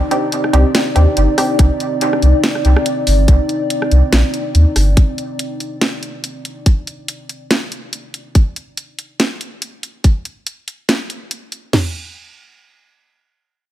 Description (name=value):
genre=deep dubstep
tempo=142 BPM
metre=4/4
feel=swing 56% on 16ths, half-time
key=C minor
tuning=A4 = 439 Hz
part: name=dark analog pad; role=sustained chords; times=0.0-8.3 s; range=C4 to D5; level=-20 LUFS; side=left 1 dB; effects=wide subtle chorus
part: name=downlifter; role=sound effects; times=0.0-1.6 s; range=none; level=-42 LUFS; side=equal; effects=none
part: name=filtered dub chord stab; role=stabs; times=0.1-1.6 s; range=C4 to G4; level=-21 LUFS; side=right 2 dB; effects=chorus, dub echo
part: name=garage drum kit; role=drums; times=0.1-11.6 s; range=hi-hat, rim click, snare drum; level=-19 LUFS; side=equal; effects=studio reverb
part: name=soft dub sub bass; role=bass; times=0.5-5.0 s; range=G1 to Eb2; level=-11 LUFS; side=equal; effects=none
part: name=garage drum kit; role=drums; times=1.6-11.8 s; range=crash cymbal, kick drum, snare drum, toms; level=-12 LUFS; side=equal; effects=studio reverb
room=digital ambience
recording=none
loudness=-13 LUFS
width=side -12 dB against mid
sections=0.0-11.7 A section; 11.7-13.7 B section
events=filter sweep on sub bass 0.0-5.0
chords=0.0 Cmadd9; 11.7 N.C.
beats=0.32 0.74 1.17 | 1.59 2.01 2.44 2.86 | 3.28 3.70 4.12 4.55 | 4.97 5.39 5.82 6.24 | 6.66 7.08 7.51 7.93 | 8.35 8.77 9.20 9.62 | 10.04 10.46 10.89 11.31 | 11.73